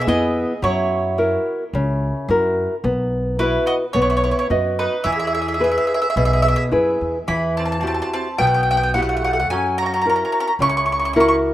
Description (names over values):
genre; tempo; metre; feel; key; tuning
italian folk, Italian serenade; 108 BPM; 4/4; straight; E major; A4 = 440 Hz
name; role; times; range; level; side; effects
mandolin; melody; 0.0-11.3 s; B4 to C#6; -20 LUFS; equal; none
mandolin; second line; 0.0-11.4 s; A3 to G#4; -28 LUFS; right 4 dB; none
nylon-string guitar; accompaniment; 0.0-11.5 s; B2 to D#5; -20 LUFS; left 1 dB; none
upright bass; bass; 0.1-11.5 s; B1 to F#2; -25 LUFS; equal; none
room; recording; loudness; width
light reverb, studio ambience; rough home demo mix; -17 LUFS; side -13 dB against mid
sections
0.0-7.3 A section; 7.3-11.5 B section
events
none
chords
0.0 E; 0.6 F#7; 2.8 Bsus4; 3.9 B; 5.1 E; 7.3 Emadd9; 9.5 F#7